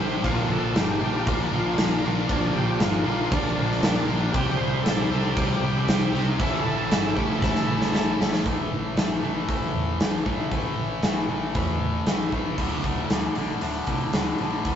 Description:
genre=classic rock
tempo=117 BPM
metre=4/4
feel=straight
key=unclear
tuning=A4 = 441 Hz
part: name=tonewheel organ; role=sustained chords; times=0.0-8.4 s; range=none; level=barely audible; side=none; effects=none
part: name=cranked stack guitar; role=riff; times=0.0-14.8 s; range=D2 to C5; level=-29 LUFS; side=left 5 dB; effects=overdrive
part: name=cranked stack guitar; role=riff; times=0.0-14.8 s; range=D2 to C5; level=-32 LUFS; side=right 6 dB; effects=overdrive
part: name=sludgy distorted guitar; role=riff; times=0.0-8.4 s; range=A2 to C4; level=-30 LUFS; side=right 1 dB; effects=overdrive
part: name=hollow-body short-scale fingered electric bass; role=bass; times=0.0-14.8 s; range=D1 to A2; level=-32 LUFS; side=equal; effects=none
part: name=overdriven tonewheel organ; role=melody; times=0.2-8.1 s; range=D4 to C5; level=-31 LUFS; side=right 1 dB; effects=slow rotary speaker
part: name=big rock drum kit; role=drums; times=0.2-14.8 s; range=crash cymbal, hi-hat, kick drum, snare drum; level=-25 LUFS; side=equal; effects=none
room=moderate stone room reverb, RT60 1.2 s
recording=rough rehearsal-room recording, nothing above 7.7 kHz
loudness=-22 LUFS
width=side -9 dB against mid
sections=0.0-8.4 A section; 8.4-12.6 B section; 12.6-14.8 C section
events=drum fill 7.4-8.4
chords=0.2 Bb; 4.3 Csus2; 6.4 A; 8.4 A5; 12.6 D5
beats=| 0.24 0.75 1.26 1.77 | 2.29 2.80 3.31 3.83 | 4.34 4.85 5.37 5.88 | 6.39 6.91 7.42 7.93 | 8.45 8.96 9.48 10.00 | 10.51 11.03 11.55 12.06 | 12.58 13.10 13.62 14.13 | 14.65

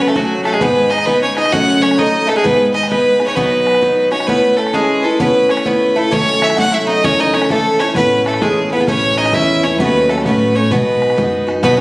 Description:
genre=celtic folk, Celtic polka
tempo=131 BPM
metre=2/4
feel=swing 65% on 8ths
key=unclear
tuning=A4 = 440 Hz
part: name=clear fiddle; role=melody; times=0.0-11.8 s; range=F#4 to F#5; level=-14 LUFS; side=equal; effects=none
part: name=Irish bouzouki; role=second line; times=0.0-11.8 s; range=F#3 to F#4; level=-21 LUFS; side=right 1 dB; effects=none
part: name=picked steel-string acoustic guitar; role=accompaniment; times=0.0-11.8 s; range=F#2 to B4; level=-17 LUFS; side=equal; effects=none
part: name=bodhran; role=percussion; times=0.0-11.8 s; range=none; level=-24 LUFS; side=equal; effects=none
part: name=upright bass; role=bass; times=7.9-11.8 s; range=A1 to A2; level=-20 LUFS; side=equal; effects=none
room=light reverb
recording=recorded on a phone in the room, studio reverb, compression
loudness=-11 LUFS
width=side -22 dB against mid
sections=0.0-4.3 A section; 4.3-11.6 B section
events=none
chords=0.0 F#m; 0.6 G#m; 1.5 F#m; 2.4 G#m; 3.4 B; 4.3 Aadd9; 6.1 D#m7b5; 7.0 F#m7; 8.0 Aadd9; 9.8 D#m7b5; 10.7 B6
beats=0.15 | 0.61 1.07 | 1.52 1.98 | 2.44 2.90 | 3.36 3.82 | 4.28 4.74 | 5.20 5.66 | 6.12 6.58 | 7.03 7.50 | 7.96 8.41 | 8.88 9.34 | 9.79 10.26 | 10.71 11.17 | 11.63

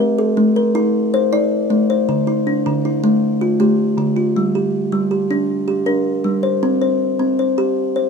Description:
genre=southern african traditional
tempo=106 BPM (dotted quarters)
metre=12/8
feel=straight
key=G equiheptatonic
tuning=A4 = 439 Hz
part: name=kalimba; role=solo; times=0.0-8.1 s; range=D3 to D5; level=-15 LUFS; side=equal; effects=none
room=light reverb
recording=minimal, uncompressed stereo recording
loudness=-15 LUFS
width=side -5 dB against mid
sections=0.0-4.4 A section; 4.4-8.1 A section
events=none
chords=0.0 Am; 2.1 Dm; 4.4 Gm; 6.6 C5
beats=0.38 0.94 1.51 | 2.08 2.65 3.22 3.79 | 4.35 4.92 5.49 6.06 | 6.63 7.20 7.77

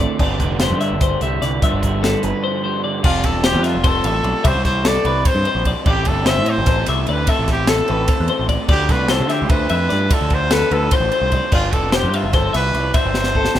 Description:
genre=math rock and midwest emo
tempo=297 BPM (eighths)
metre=7/8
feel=straight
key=unclear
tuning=A4 = 440 Hz
part: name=twelve-string electric guitar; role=accompaniment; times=0.0-4.5 s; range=G2 to F4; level=-25 LUFS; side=right 6 dB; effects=spring reverb
part: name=twelve-string electric guitar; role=arpeggios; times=0.0-13.6 s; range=A4 to E5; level=-22 LUFS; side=left 7 dB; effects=spring reverb
part: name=raw garage guitar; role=riff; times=0.0-13.6 s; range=G2 to F4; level=-25 LUFS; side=right 2 dB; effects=overdrive
part: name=growling picked electric bass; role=bass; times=0.0-13.6 s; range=E1 to D3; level=-21 LUFS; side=equal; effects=overdrive
part: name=crisp fusion drum kit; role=drums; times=0.2-13.6 s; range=crash cymbal, hi-hat, kick drum, ride cymbal, snare drum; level=-20 LUFS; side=equal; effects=none
part: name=clear trumpet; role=melody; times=3.0-13.6 s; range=F4 to E5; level=-22 LUFS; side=equal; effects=none
room=small room ambience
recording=rough home demo mix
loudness=-15 LUFS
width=side -11 dB against mid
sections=0.0-3.0 A section; 3.0-13.6 B section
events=break 2.4-3.0; drum fill 13.1-13.6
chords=0.2 G7sus4; 3.0 Fmaj9; 4.5 C6; 5.9 Am; 8.7 Dm9; 11.5 G7sus4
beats=| 0.19 0.40 0.60 0.81 1.01 1.21 1.42 | 1.62 1.82 2.03 2.23 2.43 2.63 2.84 | 3.04 3.24 3.45 3.65 3.85 4.05 4.26 | 4.46 4.66 4.86 5.06 5.27 5.47 5.67 | 5.87 6.07 6.28 6.48 6.68 6.88 7.08 | 7.29 7.49 7.69 7.89 8.09 8.29 8.50 | 8.70 8.90 9.10 9.30 9.51 9.71 9.91 | 10.11 10.31 10.52 10.72 10.92 11.12 11.32 | 11.53 11.73 11.93 12.13 12.34 12.54 12.74 | 12.94 13.15 13.35 13.55

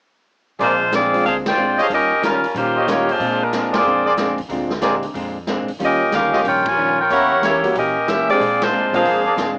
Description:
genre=jazz, big band swing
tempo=185 BPM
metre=4/4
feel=swing 64% on 8ths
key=Bb mixolydian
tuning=A4 = 441 Hz
part: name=bright saxophone section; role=melody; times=0.6-9.6 s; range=G3 to Ab5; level=-16 LUFS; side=equal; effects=cassette tape
part: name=archtop guitar, miked and amplified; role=accompaniment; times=0.6-9.6 s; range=Bb2 to G4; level=-25 LUFS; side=equal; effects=cassette tape
part: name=warm trumpet section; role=stabs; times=0.6-9.3 s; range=D4 to Eb5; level=-20 LUFS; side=equal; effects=cassette tape
part: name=upright bass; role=bass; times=0.6-9.6 s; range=Bb1 to Cb3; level=-32 LUFS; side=equal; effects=none
part: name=swinging big-band drum kit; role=drums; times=0.6-9.5 s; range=hi-hat, kick drum, ride cymbal, snare drum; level=-27 LUFS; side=equal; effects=cassette tape
part: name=dark concert grand piano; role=accompaniment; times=1.1-9.0 s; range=G3 to G4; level=-23 LUFS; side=equal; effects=cassette tape
room=light reverb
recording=home recording on cassette, small speaker sound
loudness=-15 LUFS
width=side -28 dB against mid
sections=0.6-9.6 A section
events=band accent 1.4, 3.7, 6.6, 8.6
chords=0.6 Bb9; 1.9 Eb9; 3.2 Bb9; 5.8 Eb9; 7.1 Edim7; 8.4 Bb9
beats=| 0.60 0.93 1.25 1.57 | 1.90 2.23 2.55 2.88 | 3.20 3.52 3.85 4.17 | 4.50 4.82 5.15 5.47 | 5.80 6.12 6.45 6.77 | 7.10 7.42 7.75 8.07 | 8.40 8.72 9.04 9.37

